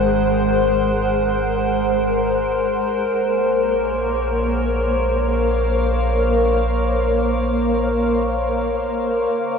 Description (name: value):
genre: ambient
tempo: free time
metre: none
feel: none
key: unclear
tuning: A4 = 441 Hz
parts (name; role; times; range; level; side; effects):
- glassy FM pad; sustained chords; 0.0-9.6 s; Db3 to Gb5; -18 LUFS; left 1 dB; ensemble chorus, built-in reverb
- round analog bass; bass; 0.0-9.3 s; Ab1 to Bb1; -24 LUFS; right 1 dB; none
room: wet huge ambient reverb, RT60 8.4 s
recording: small room reverb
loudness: -17 LUFS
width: side -6 dB against mid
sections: 0.0-9.3 A section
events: none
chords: 0.0 Ab7; 3.1 Bbmadd9